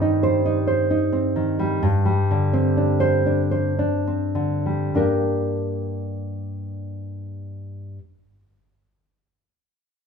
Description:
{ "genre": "romantic piece for solo classical guitar", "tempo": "33-46 BPM (dotted quarters)", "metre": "6/8", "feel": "rubato", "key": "G minor", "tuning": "A4 = 440 Hz", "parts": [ { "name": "nylon-string guitar", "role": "solo", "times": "0.0-8.0 s", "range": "G2 to C5", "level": "-20 LUFS", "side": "equal", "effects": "none" } ], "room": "light reverb", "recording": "minimal, uncompressed stereo recording, faint mains hum", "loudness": "-19 LUFS", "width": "side -6 dB against mid", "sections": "0.0-4.9 A section; 4.9-8.3 B section", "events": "slowing down 0.0-4.9", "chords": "0.0 Cm/G; 1.8 Gsus4; 4.9 Gm" }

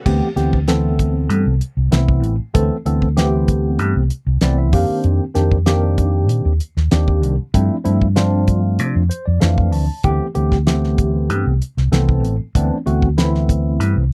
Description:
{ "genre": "electric jazz fusion", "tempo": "96 BPM", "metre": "4/4", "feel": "straight", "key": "unclear", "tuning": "A4 = 439 Hz", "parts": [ { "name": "tine electric piano", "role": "accompaniment", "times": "0.1-14.0 s", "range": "Eb3 to A5", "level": "-22 LUFS", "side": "equal", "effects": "phaser" }, { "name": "fingered electric bass", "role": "bass", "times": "0.1-14.1 s", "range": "A1 to C3", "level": "-19 LUFS", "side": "equal", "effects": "none" }, { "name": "damped 70s drum kit", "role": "drums", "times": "0.1-14.0 s", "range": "crash cymbal, hi-hat, kick drum, snare drum", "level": "-20 LUFS", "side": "equal", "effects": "none" } ], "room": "little or no reverb", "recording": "dry, close 1970s-style studio recording", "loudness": "-17 LUFS", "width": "mono", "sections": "0.1-14.1 A section", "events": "tine electric piano fill 4.1-5.0, 8.8-10.0", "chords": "0.1 D13sus4; 4.7 F13sus4; 7.5 G13sus4; 10.0 D13sus4" }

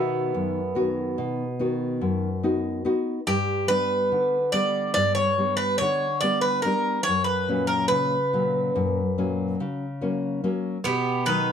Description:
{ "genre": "greek folk, Greek bouzouki band", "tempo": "143 BPM (eighths)", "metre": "9/8", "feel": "straight", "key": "unclear", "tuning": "A4 = 443 Hz", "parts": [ { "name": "Greek bouzouki", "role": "melody", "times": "0.0-11.5 s", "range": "G4 to E5", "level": "-23 LUFS", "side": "equal", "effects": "none" }, { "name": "Greek bouzouki", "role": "second line", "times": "0.0-2.4, 10.8-11.5 s", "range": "D#3 to B3", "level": "-30 LUFS", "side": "right 6 dB", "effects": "none" }, { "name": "nylon-string guitar", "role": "accompaniment", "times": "0.0-11.5 s", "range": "F#2 to F#4", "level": "-26 LUFS", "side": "left 2 dB", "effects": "none" } ], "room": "moderate studio reverb, RT60 0.6 s", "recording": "none", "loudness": "-22 LUFS", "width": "side -8 dB against mid", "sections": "0.0-3.3 A section; 3.3-11.5 B section", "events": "none", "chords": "0.0 B; 3.3 G; 7.1 F#; 10.8 B" }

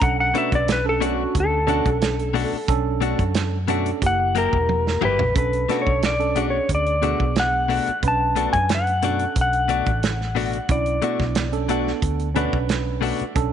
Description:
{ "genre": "straight-eighth soul blues", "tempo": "90 BPM", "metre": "4/4", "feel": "straight", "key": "B minor", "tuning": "A4 = 440 Hz", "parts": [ { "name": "clean lap steel guitar", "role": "melody", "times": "0.0-12.0 s", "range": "F#4 to A5", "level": "-22 LUFS", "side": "left 2 dB", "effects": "none" }, { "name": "tine electric piano", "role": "accompaniment", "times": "0.0-13.5 s", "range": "A#3 to B4", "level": "-27 LUFS", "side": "right 14 dB", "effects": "none" }, { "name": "vintage muted fingered electric bass", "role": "bass", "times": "0.0-13.5 s", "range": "E1 to F#2", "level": "-25 LUFS", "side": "equal", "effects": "none" }, { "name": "warm soul drum kit", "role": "drums", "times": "0.0-13.5 s", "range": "hi-hat, kick drum, snare drum, toms", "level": "-25 LUFS", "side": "right 3 dB", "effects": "none" }, { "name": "direct-recorded clean electric guitar", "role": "stabs", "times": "0.3-13.2 s", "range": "B2 to G4", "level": "-27 LUFS", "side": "left 10 dB", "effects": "none" } ], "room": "light reverb, studio reverb", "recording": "1960s-style stereo with parts hard left and right, nothing above 10.9 kHz", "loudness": "-19 LUFS", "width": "side -9 dB against mid", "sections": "0.0-5.4 A section; 5.4-13.5 B section", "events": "electric slide guitar solo 0.0-5.4; drum fill 4.7-5.4", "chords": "0.0 Bm7; 4.0 F#7b9; 5.4 Bm7" }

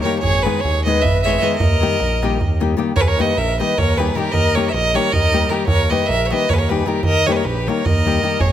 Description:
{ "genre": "balkan folk, Balkan wedding band", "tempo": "308 BPM (eighths)", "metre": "7/8", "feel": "straight", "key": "Eb phrygian dominant", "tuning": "A4 = 440 Hz", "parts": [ { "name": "clear fiddle", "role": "melody", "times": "0.0-8.5 s", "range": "Bb4 to Fb5", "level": "-20 LUFS", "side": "right 4 dB", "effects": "none" }, { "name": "rich violin", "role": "second line", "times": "0.0-8.5 s", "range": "G4 to Db5", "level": "-24 LUFS", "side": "left 5 dB", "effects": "none" }, { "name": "nylon-string guitar", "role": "accompaniment", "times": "0.0-8.4 s", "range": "Eb3 to Ab4", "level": "-22 LUFS", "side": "left 6 dB", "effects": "none" }, { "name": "darbuka", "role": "percussion", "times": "0.1-8.5 s", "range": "none", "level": "-22 LUFS", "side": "right 2 dB", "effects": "none" }, { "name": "smooth gliding synth bass", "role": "bass", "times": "0.2-8.5 s", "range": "Ab1 to Eb2", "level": "-22 LUFS", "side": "equal", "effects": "none" } ], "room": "moderate scoring stage reverb, RT60 1.5 s", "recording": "none", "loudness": "-15 LUFS", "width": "side -10 dB against mid", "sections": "0.0-3.0 A section; 3.0-8.5 B section", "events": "none", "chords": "0.2 Abm; 1.6 Eb" }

